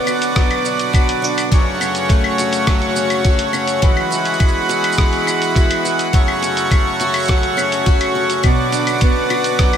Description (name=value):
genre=folktronica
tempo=104 BPM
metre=4/4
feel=straight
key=F# minor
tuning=A4 = 442 Hz
part: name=accordion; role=sustained chords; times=0.0-9.8 s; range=C#3 to D5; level=-18 LUFS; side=right 2 dB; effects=none
part: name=picked acoustic archtop guitar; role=arpeggios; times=0.0-9.8 s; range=F#2 to F#4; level=-20 LUFS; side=left 1 dB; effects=tape echo
part: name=lo-fi sampler-style drum kit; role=drums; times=0.1-9.8 s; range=cabasa, claves, hi-hat, rim click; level=-23 LUFS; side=left 1 dB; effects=none
part: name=electronic kick drum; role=drums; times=0.4-9.7 s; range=none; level=-14 LUFS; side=equal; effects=none
room=wet huge ambient reverb, RT60 7.4 s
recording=dreamy mix soaked in reverb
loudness=-14 LUFS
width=side -8 dB against mid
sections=0.0-9.8 A section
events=none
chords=0.0 Bm; 1.5 F#m; 3.8 Eadd9; 6.1 F#m; 8.4 Bm